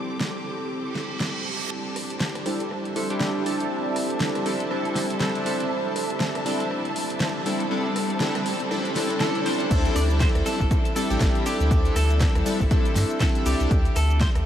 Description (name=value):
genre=deep house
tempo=120 BPM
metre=4/4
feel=swing 58% on 16ths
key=unclear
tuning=A4 = 440 Hz
part: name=clean electric guitar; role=melody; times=0.0-1.2, 9.2-14.3 s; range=D4 to D5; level=-33 LUFS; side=equal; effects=lush chorus, ping-pong delay
part: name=warbly tape-like pad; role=sustained chords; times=0.0-9.7 s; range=G3 to C5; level=-34 LUFS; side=equal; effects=chorus, built-in reverb, vintage 12-bit sampler grit, sidechain pumping
part: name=dark studio violin section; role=texture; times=0.0-14.5 s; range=E5 to D6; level=-37 LUFS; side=equal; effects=sidechain pumping
part: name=rich studio string section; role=texture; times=0.0-9.7 s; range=C4 to E5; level=-36 LUFS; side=equal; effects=sidechain pumping
part: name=deep house drum kit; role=drums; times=0.2-14.4 s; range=crash cymbal, hi-hat, rim click, shaker, snare drum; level=-30 LUFS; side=equal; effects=overdrive
part: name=reverse cymbal and riser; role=sound effects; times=0.9-9.7 s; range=none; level=-37 LUFS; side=right 2 dB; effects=none
part: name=chorused polysynth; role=stabs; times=2.5-13.7 s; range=G3 to A4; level=-26 LUFS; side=equal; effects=sidechain pumping, diffuse ambient delay
part: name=warm sub bass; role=bass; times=9.7-14.4 s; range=A1 to G2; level=-23 LUFS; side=equal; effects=sidechain pumping
part: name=electronic kick drum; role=drums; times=9.7-14.3 s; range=none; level=-22 LUFS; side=equal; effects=overdrive
room=wet huge ambient reverb, RT60 8.5 s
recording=dreamy mix soaked in reverb, vinyl crackle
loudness=-22 LUFS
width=side -10 dB against mid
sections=0.0-1.7 A section; 1.7-9.7 B section; 9.7-14.5 C section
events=reverse cymbal 0.9-1.7; build-up 1.7-9.7; filter sweep on analog polysynth 1.7-9.7; drop 9.7-14.5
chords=0.0 Gsus4; 1.7 D9sus4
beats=0.21 0.71 1.21 | 1.71 2.21 2.71 3.21 | 3.71 4.21 4.71 5.21 | 5.71 6.21 6.71 7.21 | 7.71 8.21 8.71 9.21 | 9.71 10.21 10.71 11.21 | 11.71 12.21 12.71 13.21 | 13.71 14.21